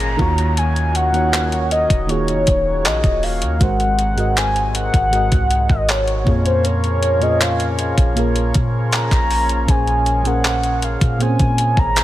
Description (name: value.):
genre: contemporary R&B.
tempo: 79 BPM.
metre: 4/4.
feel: straight.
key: unclear.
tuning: A4 = 440 Hz.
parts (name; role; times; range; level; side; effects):
mellow horn-like synth lead; melody; 0.0-12.0 s; C5 to C6; -20 LUFS; left 1 dB; chorus, digital delay.
mellow FM electric piano; accompaniment; 0.0-12.0 s; Ab2 to Eb5; -22 LUFS; right 1 dB; chorus.
mellow accordion; sustained chords; 0.0-12.0 s; C3 to Ab4; -27 LUFS; left 2 dB; sidechain pumping.
soft 808-style bass; bass; 0.0-12.0 s; Eb1 to Bb2; -20 LUFS; equal; none.
crisp 8-bit digital drum machine; drums; 0.0-12.0 s; handclaps, hi-hat, kick drum; -19 LUFS; equal; overdrive.
downlifter; sound effects; 0.0-3.6 s; none; -36 LUFS; equal; none.
room: little or no reverb.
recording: none.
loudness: -15 LUFS.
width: side -14 dB against mid.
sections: 0.0-12.0 A section.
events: none.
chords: 0.2 Ebm7; 3.6 Ab7; 6.3 Bbm9; 9.7 Bbm7.